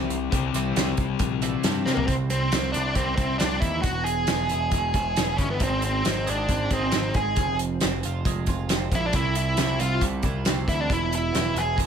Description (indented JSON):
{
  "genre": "quiet-loud alternative rock",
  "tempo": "136 BPM",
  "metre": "4/4",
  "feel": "straight",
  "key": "unclear",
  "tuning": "A4 = 441 Hz",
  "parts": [
    { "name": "twelve-string electric guitar", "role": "arpeggios", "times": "0.0-11.9 s", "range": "E2 to Ab4", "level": "-31 LUFS", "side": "right 8 dB", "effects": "analog chorus" },
    { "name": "distorted electric guitar", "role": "riff", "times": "0.0-2.1 s", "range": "C3 to C4", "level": "-27 LUFS", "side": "left 14 dB", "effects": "distortion" },
    { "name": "growling picked electric bass", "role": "bass", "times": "0.0-11.9 s", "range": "E1 to C3", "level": "-29 LUFS", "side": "equal", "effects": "overdrive" },
    { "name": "loose indie drum kit", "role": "drums", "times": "0.1-11.9 s", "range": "hi-hat, kick drum, snare drum, toms", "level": "-26 LUFS", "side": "equal", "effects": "none" },
    { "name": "octave-fuzz lead guitar", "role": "melody", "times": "1.9-11.8 s", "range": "Bb3 to G#4", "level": "-26 LUFS", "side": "equal", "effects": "distortion, plate reverb" }
  ],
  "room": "light reverb",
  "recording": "none",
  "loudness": "-22 LUFS",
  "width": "side -7 dB against mid",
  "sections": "0.0-2.1 A section; 2.1-11.9 B section",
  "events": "drum fill 1.9",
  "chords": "0.0 C; 3.9 E; 5.6 Ab; 7.4 Fm; 9.1 C; 10.9 E"
}